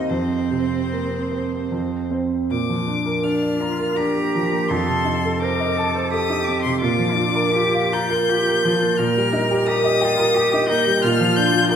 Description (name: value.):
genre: classical, slow romantic movement for piano trio.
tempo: 72-90 BPM.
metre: 3/4.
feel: rubato.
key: Bb major.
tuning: A4 = 442 Hz.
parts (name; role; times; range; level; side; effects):
rich violin; melody; 0.0-11.8 s; C5 to G6; -24 LUFS; left 6 dB; none.
rich cello; second line; 0.0-11.8 s; C4 to Bb4; -25 LUFS; right 4 dB; none.
warm baby grand piano; accompaniment; 0.0-11.8 s; Eb2 to Bb5; -20 LUFS; right 1 dB; none.
room: wet scoring stage reverb, RT60 1.5 s.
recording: heard from further back in the room.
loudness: -18 LUFS.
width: side -8 dB against mid.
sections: 0.0-2.5 A section; 2.5-11.8 B section.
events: none.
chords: 0.1 Fsus4; 1.7 F5; 2.5 Bb; 4.7 F7; 6.8 Bb; 9.0 Eb/Bb; 11.0 Bb.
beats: | 0.09 0.91 1.71 | 2.49 3.23 3.96 | 4.69 5.40 6.11 | 6.80 7.53 8.28 | 8.97 9.66 10.35 | 11.02 11.70.